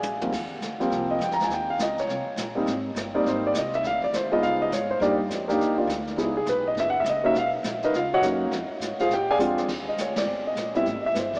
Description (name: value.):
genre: jazz piano trio.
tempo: 205 BPM.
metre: 4/4.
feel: swing 62% on 8ths.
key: Eb major.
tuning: A4 = 441 Hz.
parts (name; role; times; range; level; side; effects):
warm grand piano; melody; 0.0-11.4 s; Eb2 to Bb5; -23 LUFS; equal; none.
upright bass; bass; 0.0-11.4 s; E1 to Bb2; -36 LUFS; equal; none.
jazz brush drum kit; drums; 0.0-11.4 s; brushed snare drum, crash cymbal, hi-hat, kick drum, ride cymbal, snare drum, toms; -34 LUFS; equal; none.
room: wet cathedral reverb, RT60 6.0 s.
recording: in a vast, echoing space, small speaker sound.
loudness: -22 LUFS.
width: side -37 dB against mid.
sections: 0.3-9.7 A section; 9.7-11.4 B section.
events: drum fill 0.0-0.3, 9.4; band accent 10.1.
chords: 0.3 Eb6; 1.5 Eb7; 2.7 Abmaj7; 3.8 Dm; 4.4 Db9; 5.0 Ebmaj9; 6.2 Dbm7; 6.8 Gb5; 7.3 Bmaj9; 8.5 Fm; 9.1 Bb7; 9.7 Ebmaj7; 10.9 A5.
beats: 0.03 | 0.32 0.61 0.91 1.20 | 1.50 1.79 2.08 2.38 | 2.67 2.96 3.25 3.55 | 3.84 4.13 4.42 4.72 | 5.01 5.30 5.59 5.88 | 6.18 6.47 6.76 7.05 | 7.35 7.64 7.93 8.22 | 8.51 8.81 9.10 9.39 | 9.68 9.98 10.27 10.56 | 10.85 11.15.